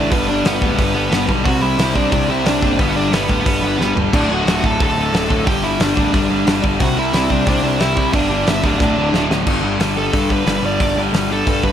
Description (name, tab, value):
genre	punk rock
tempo	180 BPM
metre	4/4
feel	straight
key	unclear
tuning	A4 = 440 Hz
part	high-gain lead guitar	melody	0.0-11.7 s	B3 to A5	-20 LUFS	right 1 dB	distortion, digital delay
part	overdriven electric guitar	riff	0.0-11.7 s	D2 to C4	-22 LUFS	right 5 dB	none
part	sludgy distorted guitar	riff	0.0-11.7 s	D2 to C4	-22 LUFS	left 8 dB	overdrive
part	fuzz picked electric bass	bass	0.0-11.7 s	D1 to G2	-22 LUFS	right 1 dB	overdrive
part	loose indie drum kit	drums	0.1-11.7 s	crash cymbal, hi-hat, kick drum, snare drum, toms	-20 LUFS	equal	none
room	light reverb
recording	none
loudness	-14 LUFS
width	side -9 dB against mid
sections	0.0-9.5 A section; 9.5-11.7 B section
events	drum fill 3.8-4.1, 8.8-9.5; lead electric guitar solo 9.5-11.7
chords	0.1 G; 1.5 C; 2.8 G; 4.1 D; 5.5 G5; 6.8 C; 8.1 G5; 8.8 D5; 9.5 G5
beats	| 0.11 0.45 0.78 1.12 | 1.45 1.79 2.12 2.46 | 2.79 3.13 3.46 3.80 | 4.13 4.47 4.80 5.13 | 5.47 5.80 6.14 6.47 | 6.80 7.14 7.47 7.80 | 8.14 8.47 8.80 9.13 | 9.47 9.80 10.13 10.47 | 10.80 11.13 11.47